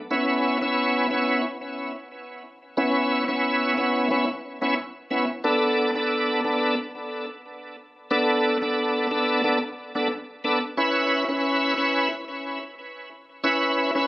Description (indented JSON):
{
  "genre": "dancehall",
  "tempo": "90 BPM",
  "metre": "4/4",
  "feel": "straight",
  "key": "unclear",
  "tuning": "A4 = 440 Hz",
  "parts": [
    { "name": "bright tonewheel organ", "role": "solo", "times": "0.1-14.1 s", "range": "B3 to B4", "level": "-22 LUFS", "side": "equal", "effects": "overdrive, chorus vibrato, slow rotary speaker, ping-pong delay" }
  ],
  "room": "light reverb",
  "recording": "recorded on a phone in the room, studio reverb, compression",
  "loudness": "-21 LUFS",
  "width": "side -18 dB against mid",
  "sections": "0.1-14.1 A section",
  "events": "none",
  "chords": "0.1 C#m7; 5.4 Bm7; 10.8 C#m7"
}